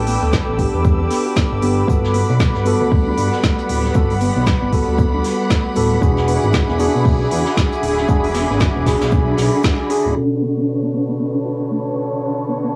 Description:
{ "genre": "deep house", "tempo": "116 BPM", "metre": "4/4", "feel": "swing 58% on 16ths", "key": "B minor", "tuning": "A4 = 440 Hz", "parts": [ { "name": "warm analog pad", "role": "sustained chords", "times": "0.0-12.8 s", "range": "D3 to D6", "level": "-28 LUFS", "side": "equal", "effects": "chorus, sidechain pumping" }, { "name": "smooth synth bass", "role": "bass", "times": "0.0-10.1 s", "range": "D1 to G2", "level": "-22 LUFS", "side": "equal", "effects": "sidechain pumping" }, { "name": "dark studio string section", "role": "texture", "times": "0.0-12.8 s", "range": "D3 to A5", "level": "-27 LUFS", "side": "equal", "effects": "sidechain pumping" }, { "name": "soft string machine", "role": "texture", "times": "0.0-12.8 s", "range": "B5 to E6", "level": "-33 LUFS", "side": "equal", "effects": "ensemble chorus, sidechain pumping" }, { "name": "soft round pluck", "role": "arpeggios", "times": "0.1-12.7 s", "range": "G#3 to F#4", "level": "-29 LUFS", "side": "equal", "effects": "none" }, { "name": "deep house drum kit", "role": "drums", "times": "0.1-10.0 s", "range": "hi-hat, snare drum", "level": "-29 LUFS", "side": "equal", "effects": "small room ambience" }, { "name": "soft brush drum kit", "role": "drums", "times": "0.1-10.0 s", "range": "hi-hat, shaker, snare drum", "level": "-36 LUFS", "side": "equal", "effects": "sidechain pumping on hats, high-pass filter on hats, small room ambience, high-pass filter on snare, sidechain pumping on perc, high-pass filter on perc, high-pass filter on room" }, { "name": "electronic kick drum", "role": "drums", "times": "0.3-9.8 s", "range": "none", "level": "-20 LUFS", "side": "equal", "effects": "overdrive, small room ambience" }, { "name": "tine electric piano", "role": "stabs", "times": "0.6-12.8 s", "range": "B2 to A4", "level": "-23 LUFS", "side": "equal", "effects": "sidechain pumping, low-pass filter, tape echo" }, { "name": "downlifter", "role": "sound effects", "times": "10.3-12.8 s", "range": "none", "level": "-44 LUFS", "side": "equal", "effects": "none" } ], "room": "light reverb, studio reverb", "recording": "cassette tape, low-pass filter", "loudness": "-17 LUFS", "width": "mono", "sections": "0.0-10.2 A section; 10.2-12.8 B section", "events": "band accent 9.6; filter sweep on tine electric piano 10.2-12.8; filter sweep on synth arpeggio sound 10.2-12.8; filter sweep 10.2-12.8", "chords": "0.0 A9sus4; 1.9 Gmaj7; 6.0 E9; 10.2 Bm9" }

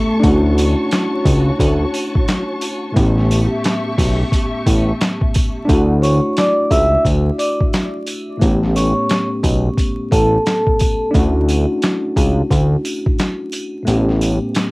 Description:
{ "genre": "hip hop, boom-bap hip-hop", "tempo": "88 BPM", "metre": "4/4", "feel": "swing 62% on 16ths", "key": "D major", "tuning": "A4 = 440 Hz", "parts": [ { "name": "vibraphone with soft mallets", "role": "melody", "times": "0.0-0.2, 6.0-11.1 s", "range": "A3 to E6", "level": "-19 LUFS", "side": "equal", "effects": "high-pass filter, low-pass filter, tape echo" }, { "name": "mellow tine electric piano", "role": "accompaniment", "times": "0.0-14.7 s", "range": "A2 to G4", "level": "-20 LUFS", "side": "left 1 dB", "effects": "medium stereo tremolo, cassette tape, high-pass filter, low-pass filter" }, { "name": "warm studio string section", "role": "sustained chords", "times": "0.0-5.7 s", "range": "F#4 to C#6", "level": "-25 LUFS", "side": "left 1 dB", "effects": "high-pass filter, low-pass filter, cassette tape" }, { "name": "fat analog bass", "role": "bass", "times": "0.2-14.4 s", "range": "A1 to D2", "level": "-15 LUFS", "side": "equal", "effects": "none" }, { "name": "boom bap sampler-style drum kit", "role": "drums", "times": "0.2-14.7 s", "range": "handclaps, hi-hat, kick drum, snare drum", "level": "-18 LUFS", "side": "equal", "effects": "cassette tape" }, { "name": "sleigh bells", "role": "percussion", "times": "0.2-14.7 s", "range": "none", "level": "-31 LUFS", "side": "right 3 dB", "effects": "none" } ], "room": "light reverb", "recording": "home recording on cassette, vinyl crackle", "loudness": "-14 LUFS", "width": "side -25 dB against mid", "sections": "0.0-5.7 A section; 5.7-14.7 B section", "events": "kick muted 13.9-14.7", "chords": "0.2 Dmaj7; 3.0 A7; 5.7 Dmaj7; 8.4 A7; 11.1 Dmaj7; 13.9 A7" }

